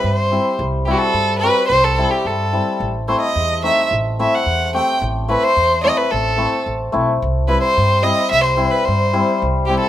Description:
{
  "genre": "klezmer",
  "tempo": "109 BPM",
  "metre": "2/4",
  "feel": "straight",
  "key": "unclear",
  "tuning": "A4 = 440 Hz",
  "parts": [
    { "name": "rich violin", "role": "melody", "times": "0.0-9.9 s", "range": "F#4 to G5", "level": "-17 LUFS", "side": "right 1 dB", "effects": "plate reverb" },
    { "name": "hammered dulcimer", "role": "accompaniment", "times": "0.0-9.9 s", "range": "G3 to G4", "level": "-20 LUFS", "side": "left 3 dB", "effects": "none" },
    { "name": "upright bass", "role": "bass", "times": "0.0-9.7 s", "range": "A1 to G2", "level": "-21 LUFS", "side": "right 1 dB", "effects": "none" }
  ],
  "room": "moderate small room reverb, RT60 0.5 s",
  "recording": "none",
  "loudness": "-14 LUFS",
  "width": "side -12 dB against mid",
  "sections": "0.0-7.2 A section; 7.2-9.9 A section",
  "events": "none",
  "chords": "0.0 C; 2.8 Am; 7.2 C",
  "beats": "0.03 | 0.58 1.14 | 1.69 2.24 | 2.80 3.35 | 3.90 4.45 | 5.00 5.56 | 6.11 6.66 | 7.21 7.76 | 8.31 8.86 | 9.41"
}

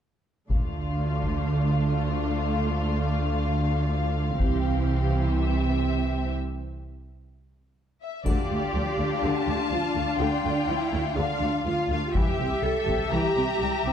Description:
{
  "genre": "cinematic, epic orchestral film score",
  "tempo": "124 BPM",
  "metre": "4/4",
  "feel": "straight",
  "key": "D minor",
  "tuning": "A4 = 440 Hz",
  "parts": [
    { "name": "rich symphonic violin section", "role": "second line", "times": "0.5-13.9 s", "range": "F4 to F5", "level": "-32 LUFS", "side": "left 5 dB", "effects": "none" },
    { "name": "warm symphonic viola section", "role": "accompaniment", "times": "0.5-13.9 s", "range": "D3 to G4", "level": "-30 LUFS", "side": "left 1 dB", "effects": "none" },
    { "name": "rich symphonic cello section", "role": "bass", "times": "0.5-13.9 s", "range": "C3 to A4", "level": "-30 LUFS", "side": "right 3 dB", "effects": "none" },
    { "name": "rich symphonic double bass section", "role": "bass", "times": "0.5-13.9 s", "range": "C2 to D2", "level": "-28 LUFS", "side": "right 2 dB", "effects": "none" },
    { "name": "taiko ensemble", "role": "drums", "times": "0.5-1.5, 4.4-5.3, 8.3-9.2, 12.1-13.1 s", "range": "none", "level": "-28 LUFS", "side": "left 1 dB", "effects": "none" },
    { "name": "warm symphonic violin section", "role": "melody", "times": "8.0-13.9 s", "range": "D5 to Bb5", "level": "-32 LUFS", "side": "left 4 dB", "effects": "none" },
    { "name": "triangle", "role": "percussion", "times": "8.3-9.2 s", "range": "none", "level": "-53 LUFS", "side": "left 3 dB", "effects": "none" }
  ],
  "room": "light reverb",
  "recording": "dark, warm production",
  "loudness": "-23 LUFS",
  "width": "side -9 dB against mid",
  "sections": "0.5-8.3 A section; 8.3-13.9 B section",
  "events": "break 6.3-8.3",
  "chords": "0.5 Dm; 4.4 C; 8.3 Dm; 12.1 C",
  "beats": "| 0.50 0.99 1.48 1.96 | 2.45 2.93 3.42 3.90 | 4.39 4.87 5.36 5.84 | 6.33 6.81 7.30 7.78 | 8.27 8.75 9.24 9.72 | 10.21 10.69 11.17 11.66 | 12.14 12.63 13.11 13.59"
}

